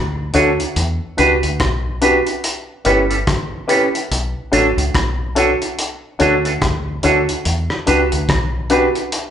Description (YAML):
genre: lovers rock reggae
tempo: 72 BPM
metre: 4/4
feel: swing 60% on 16ths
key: unclear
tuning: A4 = 440 Hz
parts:
  - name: deep dub fingered electric bass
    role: bass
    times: 0.0-8.9 s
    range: G1 to E2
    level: -21 LUFS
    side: equal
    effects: none
  - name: warm concert grand piano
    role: accompaniment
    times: 0.3-8.9 s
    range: C#4 to C#5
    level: -18 LUFS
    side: left 1 dB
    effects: none
  - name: electric guitar with an envelope filter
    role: stabs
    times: 0.3-8.8 s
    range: C#4 to B4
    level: -19 LUFS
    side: right 4 dB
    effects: none
  - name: cloth-damped thuddy drum kit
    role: drums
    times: 0.3-9.3 s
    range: hi-hat, kick drum, rim click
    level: -21 LUFS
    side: left 1 dB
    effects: none
room: wet large studio reverb, RT60 1.3 s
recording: band playing live in one room, nothing above 10.9 kHz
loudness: -14 LUFS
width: side -9 dB against mid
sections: 0.0-9.3 A section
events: none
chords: 0.0 Bm7; 0.8 Em7; 2.4 A7; 4.1 Bm7; 7.4 Em7